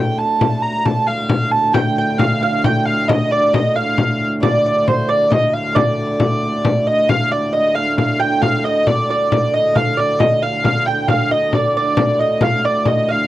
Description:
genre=medieval dance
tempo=90 BPM (dotted quarters)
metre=6/8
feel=straight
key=D phrygian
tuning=A4 = 440 Hz
part: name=dark hurdy-gurdy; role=melody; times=0.0-13.3 s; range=C5 to Bb5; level=-17 LUFS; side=right 1 dB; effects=none
part: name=pedal harmonium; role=drone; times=0.0-13.3 s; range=D2 to A2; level=-23 LUFS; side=right 1 dB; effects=none
part: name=frame drum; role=percussion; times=0.2-13.1 s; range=none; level=-19 LUFS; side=left 3 dB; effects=none
part: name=lute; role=second line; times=1.7-13.3 s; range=C5 to G5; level=-22 LUFS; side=right 5 dB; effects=none
room=light reverb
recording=dry, close 1970s-style studio recording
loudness=-14 LUFS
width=side -14 dB against mid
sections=0.0-7.1 A section; 7.1-13.3 B section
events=none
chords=none

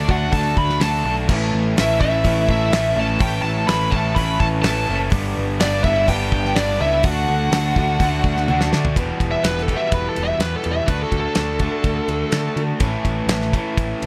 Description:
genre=classic rock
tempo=125 BPM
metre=4/4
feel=straight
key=unclear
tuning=A4 = 440 Hz
part: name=bluesy overdriven lead guitar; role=melody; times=0.0-12.6 s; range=A4 to B5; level=-25 LUFS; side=equal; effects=distortion
part: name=octave-fuzz lead guitar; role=second line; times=0.0-8.7 s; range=D4 to B4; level=-32 LUFS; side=equal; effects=none
part: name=picked acoustic archtop guitar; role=accompaniment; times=0.0-14.1 s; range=E2 to A4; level=-35 LUFS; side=equal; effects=none
part: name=distorted electric guitar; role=riff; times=0.0-14.1 s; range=E2 to B4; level=-30 LUFS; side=equal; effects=distortion
part: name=overdriven electric guitar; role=riff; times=0.0-14.1 s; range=E2 to D4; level=-28 LUFS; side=equal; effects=none
part: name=picked electric bass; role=bass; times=0.0-14.1 s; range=E1 to D3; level=-25 LUFS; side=equal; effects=none
part: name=damped 70s drum kit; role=drums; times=0.1-14.1 s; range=crash cymbal, hi-hat, kick drum, ride cymbal, snare drum, toms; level=-24 LUFS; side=equal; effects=none
room=light reverb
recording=faint mains hum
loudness=-19 LUFS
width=mono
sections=0.0-9.0 A section; 9.0-14.1 B section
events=drum fill 8.5-9.0; lead electric guitar solo 9.0-14.1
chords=0.0 D; 1.3 A; 5.1 G; 7.0 D; 9.0 Em; 10.9 D; 12.8 A

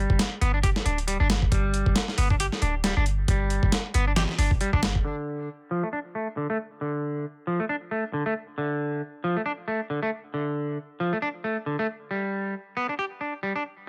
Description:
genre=breakbeat, breaks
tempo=136 BPM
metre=4/4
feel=swing 57% on 16ths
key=D dorian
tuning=A4 = 440 Hz
part: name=semi-hollow electric guitar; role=riff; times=0.0-13.6 s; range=D3 to G4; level=-30 LUFS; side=equal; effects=tube saturation, low-pass filter, dub echo
part: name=warm 808-style bass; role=bass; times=0.0-5.0 s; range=D1 to G1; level=-28 LUFS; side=equal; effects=tube saturation
part: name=dusty soul sampler-style drum kit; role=drums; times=0.1-5.0 s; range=hi-hat, kick drum, snare drum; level=-27 LUFS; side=equal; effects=overdrive
room=light reverb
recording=none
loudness=-27 LUFS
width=mono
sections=0.0-5.0 A section; 5.0-13.9 B section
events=filter sweep on clean electric guitar 5.0-13.9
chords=0.0 G5; 5.0 D5; 12.1 G5

